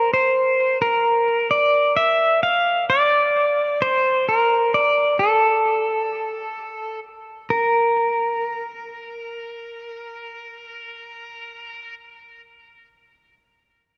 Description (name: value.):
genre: dream pop.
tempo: 65 BPM.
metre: 4/4.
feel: straight.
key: Bb lydian.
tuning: A4 = 440 Hz.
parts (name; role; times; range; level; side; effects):
pedal steel guitar; melody; 0.0-11.9 s; A4 to F5; -21 LUFS; equal; tape echo.
room: moderate plate reverb, RT60 3.6 s.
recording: dark, warm production.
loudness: -19 LUFS.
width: mono.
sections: 0.0-7.5 A section; 7.5-11.2 B section.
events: none.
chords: none.